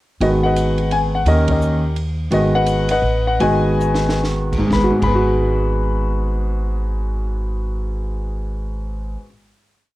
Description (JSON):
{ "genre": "jazz piano trio", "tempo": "120-172 BPM", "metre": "3/4", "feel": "swing 63% on 8ths", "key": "G# minor", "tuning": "A4 = 440 Hz", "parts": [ { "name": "warm concert grand piano", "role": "melody", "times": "0.2-9.3 s", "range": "G#2 to B5", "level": "-18 LUFS", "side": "left 1 dB", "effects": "none" }, { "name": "upright bass", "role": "bass", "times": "0.2-9.2 s", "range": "G#1 to D#2", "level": "-21 LUFS", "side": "equal", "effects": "none" }, { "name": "compact cocktail drum kit", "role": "drums", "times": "0.2-5.1 s", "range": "crash cymbal, hi-hat, kick drum, ride cymbal, snare drum", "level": "-29 LUFS", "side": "right 2 dB", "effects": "none" } ], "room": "moderate club reverb, RT60 0.8 s", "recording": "worn, warbling old tape, cassette tape, warbly pitch drift", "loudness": "-16 LUFS", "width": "side -17 dB against mid", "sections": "0.2-4.7 A section; 4.7-7.7 final chord", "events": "band accent 1.4; slowing down 2.3-4.7; drum fill 3.8-4.2", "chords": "0.2 G#m7; 1.3 D#7; 2.3 G#m7" }